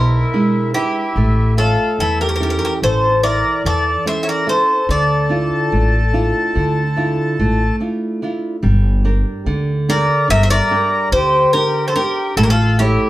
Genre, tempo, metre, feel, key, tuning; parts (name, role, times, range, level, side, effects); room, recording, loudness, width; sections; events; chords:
greek folk; 145 BPM (eighths); 9/8; straight; A4 = 436 Hz
Greek bouzouki; melody; 0.0-13.1 s; G4 to E5; -17 LUFS; equal
accordion; second line; 0.0-13.1 s; E4 to C#5; -22 LUFS; left 2 dB
nylon-string guitar; accompaniment; 0.0-13.1 s; B2 to E5; -20 LUFS; right 2 dB
upright bass; bass; 0.0-12.9 s; G1 to E2; -18 LUFS; equal
wet studio ambience, RT60 0.5 s; heard from further back in the room; -14 LUFS; side -15 dB against mid
0.0-8.6 A section; 8.6-13.1 B section
0.0 E7; 1.2 A; 4.9 Dmadd9; 8.6 Gm; 12.4 A